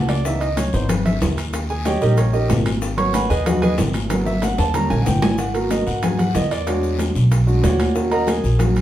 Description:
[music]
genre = Afro-Cuban jazz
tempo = 187 BPM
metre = 4/4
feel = straight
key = G# minor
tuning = A4 = 436 Hz
[part]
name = warm baby grand piano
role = accompaniment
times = 0.0-8.7 s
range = E3 to C#6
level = -22 LUFS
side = right 2 dB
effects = none
[part]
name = upright bass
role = bass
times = 0.0-8.8 s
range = G#1 to G#2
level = -20 LUFS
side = equal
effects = none
[part]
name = bongos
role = percussion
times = 0.1-8.8 s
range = none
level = -28 LUFS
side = left 3 dB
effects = none
[part]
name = congas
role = percussion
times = 0.1-8.8 s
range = none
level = -24 LUFS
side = left 1 dB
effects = none
[part]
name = guiro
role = percussion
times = 0.1-8.8 s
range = none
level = -36 LUFS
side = left 5 dB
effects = none
[part]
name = timbales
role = percussion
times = 0.1-8.8 s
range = none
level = -27 LUFS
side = right 2 dB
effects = none
[part]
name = maracas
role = percussion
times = 0.3-8.8 s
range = none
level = -39 LUFS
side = left 4 dB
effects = none
[sound]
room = wet club reverb, RT60 0.8 s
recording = heard from further back in the room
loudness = -16 LUFS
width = side -12 dB against mid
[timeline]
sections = 0.0-5.4 A section; 5.4-8.8 A section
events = grand piano solo 0.0-8.8; drum fill 4.1-5.4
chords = 0.3 C#m7; 1.5 D#7; 2.8 G#m9; 4.7 D#7; 5.4 G#m9; 6.7 E13; 8.0 D#m7

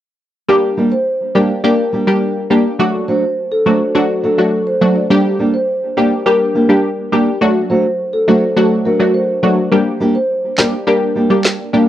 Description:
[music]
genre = dancehall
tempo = 104 BPM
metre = 4/4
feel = straight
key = G harmonic minor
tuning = A4 = 440 Hz
[part]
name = punchy chord stab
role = accompaniment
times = 0.5-11.9 s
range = F#3 to G4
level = -14 LUFS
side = equal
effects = chorus, phaser, cassette tape
[part]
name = nylon-string guitar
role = arpeggios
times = 0.8-11.9 s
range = F#3 to G4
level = -18 LUFS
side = right 1 dB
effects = cassette tape, analog delay
[part]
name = marimba with medium mallets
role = melody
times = 0.9-11.3 s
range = A4 to D5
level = -18 LUFS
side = equal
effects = cassette tape
[part]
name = electronic handclaps and snare drum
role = drums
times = 10.6-11.6 s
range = none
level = -14 LUFS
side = equal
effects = cassette tape
[sound]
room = moderate studio reverb, RT60 0.6 s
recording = home recording on cassette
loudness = -12 LUFS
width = side -12 dB against mid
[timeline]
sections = 0.5-11.9 A section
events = none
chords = 0.5 Gm; 2.8 D; 5.1 Gm; 7.4 D; 9.7 Gm

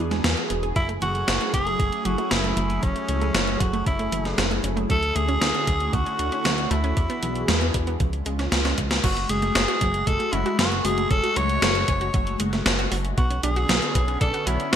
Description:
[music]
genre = synthwave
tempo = 116 BPM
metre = 4/4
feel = straight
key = F# minor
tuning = A4 = 440 Hz
[part]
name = phased analog pad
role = sustained chords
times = 0.0-14.8 s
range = D3 to G#4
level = -29 LUFS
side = left 1 dB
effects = phaser, chorus, sidechain pumping
[part]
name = analog pluck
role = arpeggios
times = 0.0-14.8 s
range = E3 to G#4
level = -31 LUFS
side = right 4 dB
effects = chorus, digital delay
[part]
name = chorused synth bass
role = bass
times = 0.0-14.8 s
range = E1 to E2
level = -27 LUFS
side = equal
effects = sidechain pumping
[part]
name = gated 80s digital drum machine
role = drums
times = 0.1-14.8 s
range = crash cymbal, hi-hat, snare drum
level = -25 LUFS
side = equal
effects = gated reverb, gated reverb snare, small room ambience
[part]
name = raspy tenor saxophone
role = melody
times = 0.8-14.8 s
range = C#4 to C#5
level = -26 LUFS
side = equal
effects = digital delay
[part]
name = electronic kick drum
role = drums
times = 0.8-14.3 s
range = none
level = -25 LUFS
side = equal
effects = small room ambience
[sound]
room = light reverb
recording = bright 1980s-style digital production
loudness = -20 LUFS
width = side -9 dB against mid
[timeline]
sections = 0.0-9.0 A section; 9.0-14.8 B section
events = filter sweep on synth arpeggio sound 0.0-9.0; drum fill 8.6-9.0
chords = 0.0 E7; 0.8 F#m7; 4.9 Dmaj7; 7.0 E7; 8.0 C#; 9.0 F#madd9; 13.2 Bmadd9

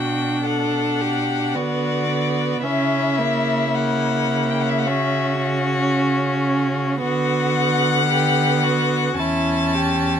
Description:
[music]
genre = classical, slow romantic movement for string quartet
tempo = 55 BPM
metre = 4/4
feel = rubato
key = B minor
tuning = A4 = 439 Hz
[part]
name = rich violin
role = melody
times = 0.0-10.2 s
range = D5 to A5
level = -23 LUFS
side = left 5 dB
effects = none
[part]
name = rich violin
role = second line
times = 0.0-10.2 s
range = E4 to A4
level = -25 LUFS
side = left 4 dB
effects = none
[part]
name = clear viola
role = accompaniment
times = 0.0-10.2 s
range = A#3 to D4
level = -23 LUFS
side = right 1 dB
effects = none
[part]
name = clear cello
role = bass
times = 0.0-10.2 s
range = E2 to D3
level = -24 LUFS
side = right 4 dB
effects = none
[sound]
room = light reverb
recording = close, detailed microphones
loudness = -18 LUFS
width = side -8 dB against mid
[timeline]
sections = 0.0-10.2 A section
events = none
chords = 0.0 Bm; 2.6 F#7/C#; 7.0 Bm/D; 9.2 C#dim/E

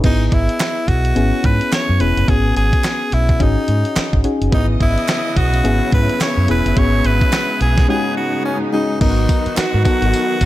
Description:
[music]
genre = R&B, new jack swing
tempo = 107 BPM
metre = 4/4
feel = swing 60% on 16ths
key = G# minor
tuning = A4 = 440 Hz
[part]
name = soft electric-piano-like synth keys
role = accompaniment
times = 0.0-10.5 s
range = G#3 to D#5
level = -21 LUFS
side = left 3 dB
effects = chorus
[part]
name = vintage muted fingered electric bass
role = bass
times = 0.0-10.5 s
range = E1 to G#2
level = -17 LUFS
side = equal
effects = none
[part]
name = clean 12-bit digital drum machine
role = drums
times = 0.0-10.5 s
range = crash cymbal, handclaps, hi-hat, kick drum, snare drum, tambourine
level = -18 LUFS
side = equal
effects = vintage 12-bit sampler grit, gated reverb
[part]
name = raspy tenor saxophone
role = melody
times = 0.1-10.5 s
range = C#4 to C#5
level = -21 LUFS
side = equal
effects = none
[part]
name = group handclap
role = percussion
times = 0.6-9.7 s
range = none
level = -31 LUFS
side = right 8 dB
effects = none
[part]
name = bright studio string section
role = sustained chords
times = 4.5-10.5 s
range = G#2 to D#5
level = -24 LUFS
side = right 1 dB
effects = none
[sound]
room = little or no reverb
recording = none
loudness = -14 LUFS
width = side -15 dB against mid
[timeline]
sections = 0.0-9.0 A section; 9.0-10.5 B section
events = break 7.9-9.0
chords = 0.0 Emaj9/G#; 1.2 F#7sus4/G#; 2.3 E69/G#; 3.4 G#7sus4; 4.5 C#m9/G#; 5.6 F#7sus4/G#; 6.8 E6/G#; 7.9 B69/G#; 9.0 G#m7

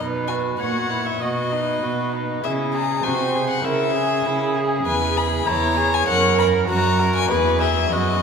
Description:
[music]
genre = quick classical-period movement for string quartet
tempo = 98 BPM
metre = 2/4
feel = rubato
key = B major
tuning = A4 = 437 Hz
[part]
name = warm violin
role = melody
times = 0.0-8.2 s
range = B4 to B5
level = -23 LUFS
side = left 5 dB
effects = none
[part]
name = warm violin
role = second line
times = 0.0-8.2 s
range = D#4 to C#5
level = -25 LUFS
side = left 2 dB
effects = none
[part]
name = rich viola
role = accompaniment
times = 0.0-8.2 s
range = F#4 to D#5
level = -24 LUFS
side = right 3 dB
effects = none
[part]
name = rich cello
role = bass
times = 0.0-8.2 s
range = E2 to C#3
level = -24 LUFS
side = right 3 dB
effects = none
[sound]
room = wet cathedral reverb, RT60 4.5 s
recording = recorded in a church or concert hall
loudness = -18 LUFS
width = side -6 dB against mid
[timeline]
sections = 0.0-8.2 A section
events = none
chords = 0.0 B; 0.6 F#7/A#; 1.2 B; 2.4 C#m; 3.0 G#7/B#; 3.6 C#m; 4.9 E; 5.5 C#m/E; 6.1 F#; 6.7 F#add9; 7.3 E

